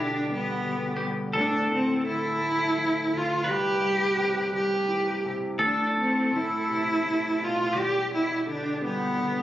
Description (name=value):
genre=acoustic folk-pop ballad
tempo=56 BPM (dotted quarters)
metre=6/8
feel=straight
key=A minor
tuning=A4 = 440 Hz
part: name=warm cello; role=melody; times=0.0-9.4 s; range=B3 to G4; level=-25 LUFS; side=equal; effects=none
part: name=pedal steel guitar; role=second line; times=0.0-9.4 s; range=G4 to B4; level=-30 LUFS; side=equal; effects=none
part: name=warm concert grand piano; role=accompaniment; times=0.0-9.4 s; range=D1 to A3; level=-32 LUFS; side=left 1 dB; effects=none
room=light reverb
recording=recorded on a phone in the room, studio reverb, nothing above 7.5 kHz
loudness=-24 LUFS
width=side -13 dB against mid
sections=0.0-9.4 A section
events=none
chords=0.0 Em7; 1.3 Dm; 3.5 C; 5.6 Amadd9; 7.7 Em7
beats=0.27 | 1.34 2.40 | 3.46 4.53 | 5.60 6.67 | 7.74 8.81